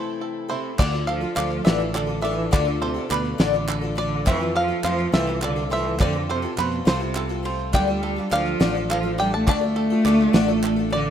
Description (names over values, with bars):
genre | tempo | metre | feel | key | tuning
indie folk with a building arrangement | 69 BPM (dotted quarters) | 6/8 | straight | unclear | A4 = 440 Hz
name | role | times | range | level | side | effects
bluegrass banjo | melody | 0.0-11.1 s | B4 to A5 | -28 LUFS | right 2 dB | analog delay
picked twelve-string acoustic guitar | accompaniment | 0.0-11.1 s | C3 to A4 | -28 LUFS | left 9 dB | none
bluegrass banjo | arpeggios | 0.0-11.1 s | C4 to D5 | -32 LUFS | right 4 dB | none
warm cello | second line | 0.5-11.1 s | B2 to A3 | -24 LUFS | right 2 dB | none
fingered electric bass | bass | 0.8-11.1 s | A1 to F2 | -28 LUFS | equal | none
cloth-damped thuddy drum kit | drums | 0.8-11.1 s | crash cymbal, kick drum, ride cymbal, snare drum | -22 LUFS | equal | none
group handclap | percussion | 0.8-10.8 s | none | -34 LUFS | right 3 dB | none
room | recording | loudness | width
light reverb, small room ambience | rough home demo mix | -20 LUFS | side -9 dB against mid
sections
0.8-11.1 A section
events
break 0.0-0.8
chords
0.0 Am/C; 0.8 Dm; 4.3 F; 7.7 Dm